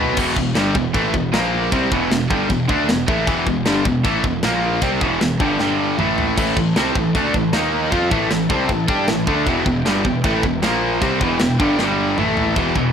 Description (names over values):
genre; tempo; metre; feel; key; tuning
heavy metal; 155 BPM; 4/4; straight; E minor; A4 = 441 Hz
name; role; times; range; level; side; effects
muted symphonic string section; sustained chords; 0.0-0.2, 6.4-12.9 s; E3 to A#5; -31 LUFS; left 2 dB; none
heavy high-gain guitar; riff; 0.0-12.9 s; E2 to G4; -23 LUFS; left 9 dB; distortion
heavy high-gain guitar; riff; 0.0-12.9 s; E2 to G4; -22 LUFS; right 7 dB; distortion
overdriven electric guitar; riff; 0.0-12.9 s; E2 to G4; -21 LUFS; equal; none
fuzz picked electric bass; bass; 0.0-12.9 s; E1 to G2; -27 LUFS; equal; overdrive
tight metal drum kit; drums; 0.2-12.8 s; crash cymbal, kick drum, snare drum, toms; -23 LUFS; equal; none
room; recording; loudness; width
moderate studio reverb, RT60 0.6 s; rough home demo mix; -16 LUFS; side -7 dB against mid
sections
0.2-12.6 A section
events
drum fill 0.0, 5.6-6.4, 11.8-12.6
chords
0.2 Em; 1.3 A#5; 1.7 Em; 4.4 A#5; 4.8 Em; 5.6 G5; 6.0 A5; 7.5 D#5; 7.9 A5; 9.5 Em; 10.6 A#5; 11.0 Em; 11.8 G5; 12.2 A5